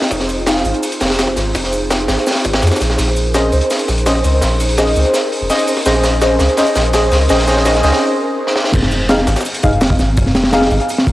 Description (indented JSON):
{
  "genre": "drum and bass, jungle",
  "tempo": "167 BPM",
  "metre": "4/4",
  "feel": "straight",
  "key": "F minor",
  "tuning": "A4 = 440 Hz",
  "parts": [
    { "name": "airy breathy pad", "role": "sustained chords", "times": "0.0-8.7 s", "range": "C4 to C5", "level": "-21 LUFS", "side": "equal", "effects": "chorus, vintage 12-bit sampler grit, cassette tape" },
    { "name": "breakbeat sampler-style drum kit", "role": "drums", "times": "0.0-11.1 s", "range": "hi-hat, shaker, snare drum", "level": "-24 LUFS", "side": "equal", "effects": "high-pass filter on perc, cassette tape, high-pass filter on snare, high-pass filter on hats" },
    { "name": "crunchy breakbeat drum kit", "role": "drums", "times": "0.0-11.1 s", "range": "crash cymbal, hi-hat, kick drum, snare drum", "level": "-17 LUFS", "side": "equal", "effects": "high-pass filter on kick, cassette tape, high-pass filter on hats, high-pass filter on cymbals, high-pass filter on snare, high-pass filter on room" },
    { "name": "soft dub sub bass", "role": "bass", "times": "0.1-10.8 s", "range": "F1 to F2", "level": "-17 LUFS", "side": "equal", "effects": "none" },
    { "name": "deep mellow chord stab", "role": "stabs", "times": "0.5-0.6, 3.3-10.7 s", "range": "Db4 to F5", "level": "-17 LUFS", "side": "equal", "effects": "chorus, vintage 12-bit sampler grit, cassette tape, dub echo" },
    { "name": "airy dreamy lead", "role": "melody", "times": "3.5-8.0 s", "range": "C5", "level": "-22 LUFS", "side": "equal", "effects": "chorus, cassette tape, dub echo" }
  ],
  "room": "wet lush hall reverb, RT60 2.6 s",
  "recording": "home recording on cassette",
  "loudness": "-12 LUFS",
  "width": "side -16 dB against mid",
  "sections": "0.0-8.7 A section; 8.7-11.1 B section",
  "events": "build-up 0.0-8.7; filter sweep on digital synth lead 0.0-8.7; drum fill 3.0-8.0, 8.5; break 8.0-8.7; drop 8.7-11.1",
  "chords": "0.0 Fm7; 3.0 Bbm11; 8.7 Fm7"
}